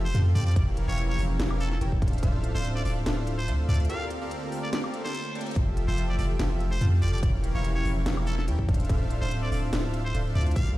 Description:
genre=future bass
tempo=144 BPM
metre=4/4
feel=swing 53% on 16ths, half-time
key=unclear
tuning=A4 = 440 Hz
part: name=trumpet with straight mute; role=melody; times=0.0-10.7 s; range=A4 to F5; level=-37 LUFS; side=equal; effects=sidechain pumping, ping-pong delay
part: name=airy breathy pad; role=sustained chords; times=0.0-10.8 s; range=D3 to G4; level=-38 LUFS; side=equal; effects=chorus, sidechain pumping
part: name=supersaw chords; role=riff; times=0.0-10.8 s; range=E3 to A5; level=-34 LUFS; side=equal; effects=sidechain pumping
part: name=long sustained 808-style bass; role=bass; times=0.0-10.8 s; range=D1 to F2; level=-26 LUFS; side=equal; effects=sidechain pumping
part: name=trap drum kit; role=drums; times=0.1-10.7 s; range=hi-hat, snare drum, woodblock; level=-35 LUFS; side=equal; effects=none
part: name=electronic kick drum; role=drums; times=0.6-2.3, 5.6-10.7 s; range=none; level=-24 LUFS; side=equal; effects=none
part: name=reverse cymbal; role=sound effects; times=5.0-5.6 s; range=none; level=-43 LUFS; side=left 5 dB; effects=none
room=little or no reverb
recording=played on a big sound system in a bare room, large studio reverb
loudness=-24 LUFS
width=side -16 dB against mid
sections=0.0-10.8 A section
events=break 3.9-5.6; reverse cymbal 5.0-5.6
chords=0.0 Fmaj9; 0.6 A7b9b13/E (rootless); 2.0 Dm9; 3.9 C13sus4; 5.6 Fmaj9; 7.2 A7b9b13/E (rootless); 8.7 Dm9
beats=0.14 | 0.56 0.98 1.40 1.81 | 2.23 2.65 3.06 3.48 | 3.90 4.31 4.73 5.14 | 5.56 5.98 6.39 6.81 | 7.23 7.64 8.06 8.48 | 8.89 9.31 9.73 10.14 | 10.56

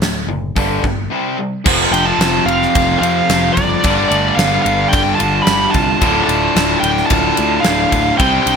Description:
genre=hard rock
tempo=110 BPM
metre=4/4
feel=straight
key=D minor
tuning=A4 = 439 Hz
part: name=cranked stack guitar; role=riff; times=0.0-8.6 s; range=D2 to C4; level=-20 LUFS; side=left 14 dB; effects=overdrive
part: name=cranked stack guitar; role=riff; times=0.0-8.6 s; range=D2 to C4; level=-22 LUFS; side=right 11 dB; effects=overdrive
part: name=picked electric bass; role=bass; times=0.0-8.6 s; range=D1 to F2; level=-22 LUFS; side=equal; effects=none
part: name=gated 80s drum kit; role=drums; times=0.0-8.6 s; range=crash cymbal, hi-hat, kick drum, ride cymbal, snare drum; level=-18 LUFS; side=equal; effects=none
part: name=distorted electric guitar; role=riff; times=1.7-8.6 s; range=D2 to C4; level=-20 LUFS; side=right 1 dB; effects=overdrive
part: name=high-gain lead guitar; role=melody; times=1.9-8.6 s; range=D5 to B5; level=-16 LUFS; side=right 1 dB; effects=distortion
part: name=smooth overdriven lead guitar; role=second line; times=1.9-8.6 s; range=G3 to G4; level=-24 LUFS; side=right 3 dB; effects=tape echo
room=light reverb, studio reverb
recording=none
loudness=-12 LUFS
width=side -6 dB against mid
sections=0.0-1.7 A section; 1.7-8.6 B section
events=break 1.1-1.7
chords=0.0 D5; 0.6 G5; 1.1 C5; 1.7 F5; 3.8 G5; 6.0 Dm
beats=0.03 0.57 1.12 | 1.66 2.21 2.75 3.29 | 3.84 4.38 4.93 5.47 | 6.02 6.56 7.10 7.65 | 8.19

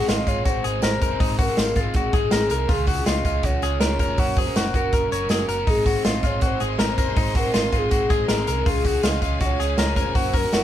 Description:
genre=jangly indie pop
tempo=161 BPM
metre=4/4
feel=straight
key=Ab mixolydian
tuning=A4 = 443 Hz
part: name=warbly nostalgic lead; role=melody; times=0.0-10.6 s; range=Ab4 to Eb5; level=-26 LUFS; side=equal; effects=chorus
part: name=crunchy overdriven guitar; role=accompaniment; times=0.0-10.6 s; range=Ab2 to Bb4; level=-30 LUFS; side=right 6 dB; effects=none
part: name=direct-recorded clean electric guitar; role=arpeggios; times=0.0-10.6 s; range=Eb4 to Db5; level=-27 LUFS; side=left 6 dB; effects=none
part: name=hollow-body short-scale fingered electric bass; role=bass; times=0.1-10.6 s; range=F1 to Db2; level=-27 LUFS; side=equal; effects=none
part: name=vintage drum kit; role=drums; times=0.1-10.6 s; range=hi-hat, kick drum, snare drum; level=-22 LUFS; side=right 1 dB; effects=none
part: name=tambourine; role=percussion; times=0.1-10.6 s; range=none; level=-39 LUFS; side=left 7 dB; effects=none
part: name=clear studio string section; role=sustained chords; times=5.7-10.6 s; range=Db4 to C6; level=-35 LUFS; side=left 3 dB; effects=none
room=moderate small room reverb, RT60 0.5 s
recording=band playing live in one room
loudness=-19 LUFS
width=side -11 dB against mid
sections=0.0-10.6 A section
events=none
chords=0.0 Ab; 2.7 Db; 4.2 Gb; 5.7 Ab; 8.7 Db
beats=0.08 0.46 0.83 | 1.20 1.57 1.95 2.32 | 2.69 3.06 3.44 3.81 | 4.18 4.55 4.93 5.30 | 5.67 6.04 6.42 6.79 | 7.16 7.54 7.91 8.28 | 8.66 9.03 9.40 9.78 | 10.15 10.52

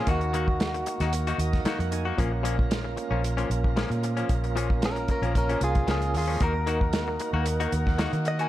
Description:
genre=straight-eighth soul blues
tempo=114 BPM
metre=4/4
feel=swing 53% on 16ths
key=Bb minor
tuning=A4 = 441 Hz
part: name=direct-recorded clean electric guitar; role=melody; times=0.0-1.6, 4.9-8.5 s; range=Db4 to Ab5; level=-30 LUFS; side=equal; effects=none
part: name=tonewheel organ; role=accompaniment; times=0.0-8.5 s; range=Bb3 to Ab5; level=-33 LUFS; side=right 6 dB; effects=slow rotary speaker
part: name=direct-recorded clean electric guitar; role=stabs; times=0.0-8.5 s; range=Bb2 to Gb4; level=-33 LUFS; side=left 7 dB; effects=warbly pitch drift, analog delay
part: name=vintage muted fingered electric bass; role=bass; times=0.1-8.4 s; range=Bb1 to Eb3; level=-28 LUFS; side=equal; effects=none
part: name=warm soul drum kit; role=drums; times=0.1-8.5 s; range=hi-hat, kick drum, snare drum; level=-28 LUFS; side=equal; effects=none
part: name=warm horn section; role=sustained chords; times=6.4-8.5 s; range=Bb4 to Gb5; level=-38 LUFS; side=left 3 dB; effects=none
room=studio ambience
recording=none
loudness=-24 LUFS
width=side -14 dB against mid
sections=0.0-8.5 A section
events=clean electric guitar solo 0.0-8.5; tonewheel organ fill 1.1-2.2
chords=0.1 Ebm; 2.2 Bbm; 6.4 Ebm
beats=| 0.07 0.60 1.13 1.66 | 2.19 2.71 3.24 3.77 | 4.30 4.83 5.36 5.89 | 6.42 6.94 7.47 8.00

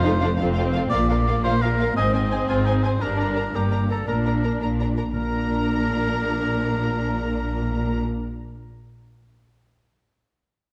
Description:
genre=cinematic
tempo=114 BPM (dotted quarters)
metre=6/8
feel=straight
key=Bb major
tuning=A4 = 440 Hz
part: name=rich symphonic violin section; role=melody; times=0.0-8.0 s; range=F5 to Bb5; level=-35 LUFS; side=equal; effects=none
part: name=warm oboe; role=second line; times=0.0-8.0 s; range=Eb4 to Eb5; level=-30 LUFS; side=equal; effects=none
part: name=warm symphonic viola section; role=accompaniment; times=0.0-8.0 s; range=Bb3 to Eb4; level=-30 LUFS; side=equal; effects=none
part: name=clear symphonic cello section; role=bass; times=0.0-8.0 s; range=F2 to Bb2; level=-28 LUFS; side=equal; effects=none
part: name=rich symphonic double bass section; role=bass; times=0.0-8.0 s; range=F1 to Bb1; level=-30 LUFS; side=equal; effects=none
part: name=timpani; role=percussion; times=0.0-0.3, 5.1-8.7 s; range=F2 to Bb2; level=-35 LUFS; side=equal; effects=none
part: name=warm studio violin section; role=second line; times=0.1-8.0 s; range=C4 to C5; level=-34 LUFS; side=equal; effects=none
room=moderate scoring stage reverb, RT60 1.7 s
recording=dark, warm production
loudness=-23 LUFS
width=mono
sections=0.0-5.1 A section; 5.1-7.2 B section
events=none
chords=0.0 F; 0.9 Bb; 1.9 Ab; 3.0 Gm; 4.1 Bb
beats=0.38 | 0.90 1.42 | 1.95 2.47 | 3.00 3.53 | 4.07 4.60 | 5.14 5.67 | 6.20 6.72

